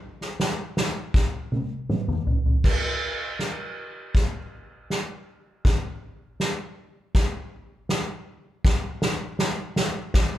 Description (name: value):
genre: rock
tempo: 80 BPM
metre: 4/4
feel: straight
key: none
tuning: none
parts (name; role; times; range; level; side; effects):
- soft-mallet drum kit; drums; 0.2-10.3 s; crash cymbal, kick drum, snare drum, toms; -23 LUFS; equal; none
room: light reverb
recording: band playing live in one room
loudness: -23 LUFS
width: side -13 dB against mid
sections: 0.0-2.6 A section; 2.6-10.4 B section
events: drum fill 1.1-2.6, 2.6-10.4; build-up 2.6-10.4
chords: none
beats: 0.40 1.15 1.90 | 2.65 3.40 4.15 4.90 | 5.65 6.40 7.15 7.90 | 8.65 9.40 10.15